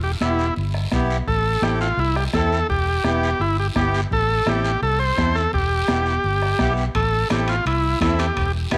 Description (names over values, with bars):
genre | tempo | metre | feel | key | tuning
latin, cumbia | 169 BPM | 4/4 | straight | A minor | A4 = 440 Hz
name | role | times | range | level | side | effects
combo organ | melody | 0.0-8.5 s | E4 to C5 | -24 LUFS | equal | none
fingered electric bass | bass | 0.0-8.8 s | E1 to E2 | -25 LUFS | equal | none
accordion | accompaniment | 0.2-8.8 s | B3 to A4 | -30 LUFS | equal | none
bombo | percussion | 0.2-8.8 s | none | -32 LUFS | equal | none
congas | percussion | 0.2-8.8 s | none | -30 LUFS | equal | none
guiro | percussion | 0.2-8.8 s | none | -38 LUFS | equal | none
timbales | percussion | 6.9-8.8 s | none | -35 LUFS | equal | none
room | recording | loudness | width
light reverb | none | -21 LUFS | mono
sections
0.0-8.8 A section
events
none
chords
0.0 Em; 1.3 Am; 2.7 Em; 4.1 Am; 5.5 Em; 6.9 Am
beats
0.21 0.57 0.92 | 1.28 1.63 1.99 2.34 | 2.69 3.05 3.40 3.76 | 4.11 4.47 4.82 5.18 | 5.53 5.88 6.24 6.59 | 6.95 7.30 7.66 8.01 | 8.37 8.72